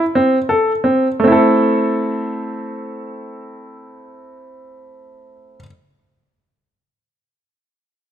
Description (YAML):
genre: contemporary instrumental, contemporary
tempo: free time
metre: none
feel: none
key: A minor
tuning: A4 = 440 Hz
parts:
  - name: bright baby grand piano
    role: arpeggios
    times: 0.0-5.7 s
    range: A3 to A4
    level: -15 LUFS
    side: equal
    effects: none
room: moderate recital hall reverb, RT60 1.7 s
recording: close, detailed microphones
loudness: -14 LUFS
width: side -10 dB against mid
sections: 0.0-1.2 A section; 1.2-6.2 B section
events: slowing down 0.0-1.2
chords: 0.0 Am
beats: free time